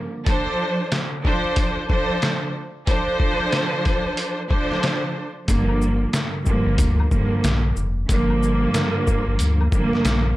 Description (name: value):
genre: hip hop, boom-bap hip-hop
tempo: 92 BPM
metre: 4/4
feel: swing 62% on 16ths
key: G minor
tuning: A4 = 440 Hz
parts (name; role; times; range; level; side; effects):
- dark studio string section; accompaniment; 0.0-10.4 s; G2 to C5; -22 LUFS; right 1 dB; none
- trip hop sampler-style drum kit; drums; 0.3-10.2 s; hi-hat, kick drum, snare drum; -23 LUFS; equal; none
- sub bass with octave; bass; 5.5-10.3 s; F1 to D2; -21 LUFS; equal; transformer saturation
- maracas and woodblock; percussion; 5.5-10.2 s; none; -36 LUFS; left 6 dB; none
room: digital ambience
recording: dry, gritty hardware recording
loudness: -19 LUFS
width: side -16 dB against mid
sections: 0.0-10.4 A section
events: none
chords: 0.3 Dm7/F; 5.5 Gm7